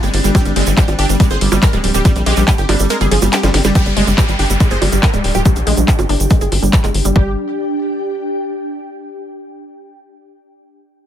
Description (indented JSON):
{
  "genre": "psychedelic trance",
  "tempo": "141 BPM",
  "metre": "4/4",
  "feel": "straight",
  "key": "unclear",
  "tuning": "A4 = 440 Hz",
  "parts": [
    { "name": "supersaw stab", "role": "melody", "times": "0.0-7.3 s", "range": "G3 to C5", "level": "-21 LUFS", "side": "right 1 dB", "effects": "phaser, sidechain pumping, digital delay" },
    { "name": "evolving wavetable pad", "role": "sustained chords", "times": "0.0-3.8 s", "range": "C4 to D4", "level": "-26 LUFS", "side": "left 1 dB", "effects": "chorus, built-in reverb, phaser, vintage 12-bit sampler grit, sidechain pumping" },
    { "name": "wide unison pluck", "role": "riff", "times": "0.0-7.4 s", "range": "F3 to Ab4", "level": "-21 LUFS", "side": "equal", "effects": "auto-pan, sidechain pumping, ping-pong delay" },
    { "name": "tight sequencer bass", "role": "bass", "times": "0.0-7.4 s", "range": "D1 to Bb1", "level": "-16 LUFS", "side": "equal", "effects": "none" },
    { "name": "techno drum kit", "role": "drums", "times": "0.0-7.1 s", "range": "bongos, handclaps, hi-hat, ride cymbal, snare drum", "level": "-20 LUFS", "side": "right 1 dB", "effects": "none" },
    { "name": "tube shaker", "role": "percussion", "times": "0.0-7.1 s", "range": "none", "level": "-27 LUFS", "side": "right 5 dB", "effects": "none" },
    { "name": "electronic kick drum", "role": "drums", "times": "0.3-7.2 s", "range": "none", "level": "-12 LUFS", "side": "equal", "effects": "none" },
    { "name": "downlifter", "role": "sound effects", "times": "3.8-7.2 s", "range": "none", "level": "-25 LUFS", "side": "equal", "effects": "none" },
    { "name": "ethereal airy pad", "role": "texture", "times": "5.0-8.8 s", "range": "D4 to G5", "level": "-23 LUFS", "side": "equal", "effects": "ensemble chorus, built-in reverb, sidechain pumping" }
  ],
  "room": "digital ambience",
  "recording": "none",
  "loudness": "-12 LUFS",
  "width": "side -10 dB against mid",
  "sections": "0.0-3.8 A section; 3.8-7.2 B section; 7.2-8.9 C section",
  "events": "drop 0.0-3.8; kick drops out 2.9-3.8; drum fill 3.3-3.8; filter sweep on synth arpeggio sound 3.8-7.2",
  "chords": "0.0 G5"
}